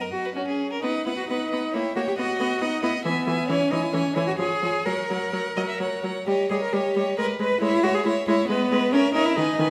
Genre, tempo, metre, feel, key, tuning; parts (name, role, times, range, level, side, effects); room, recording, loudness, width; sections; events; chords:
quick classical-period movement for string quartet; 124-139 BPM; 3/4; rubato; B major, G# minor from 6.3 s; A4 = 444 Hz
rich violin; melody; 0.0-9.7 s; D#5 to G#5; -38 LUFS; equal
clear violin; second line; 0.0-9.7 s; F#4 to E5; -31 LUFS; equal
clear cello; bass; 0.1-9.7 s; B3 to B4; -27 LUFS; equal
warm viola; accompaniment; 0.4-9.7 s; D#3 to C#4; -30 LUFS; equal
wet recital hall reverb, RT60 1.8 s; -24 LUFS; mono
0.8-9.7 A section
0.4 F#/C#; 0.8 B; 1.7 A#dim7; 2.2 B; 3.0 E; 3.5 C#m/E; 4.4 C#/E#; 4.9 F#; 6.3 D#7/G; 7.2 G#m; 7.6 C#m/G#; 8.5 G#m; 8.9 A#dim/C#